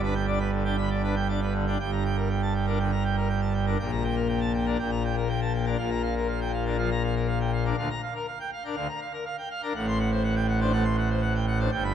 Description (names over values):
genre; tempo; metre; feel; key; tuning
classical, organ toccata; 121 BPM; 4/4; straight; G minor; A4 = 440 Hz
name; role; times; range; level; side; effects
pipe organ, full organ; solo; 0.0-11.9 s; G1 to C6; -24 LUFS; equal; none
room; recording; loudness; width
wet concert hall reverb, RT60 2.2 s; none; -24 LUFS; side -9 dB against mid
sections
0.0-1.8 A section; 1.8-11.9 B section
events
none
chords
0.0 G; 1.8 Gm; 3.8 Gm/Bb; 5.8 Bb; 7.8 Bb/D; 9.7 D7/A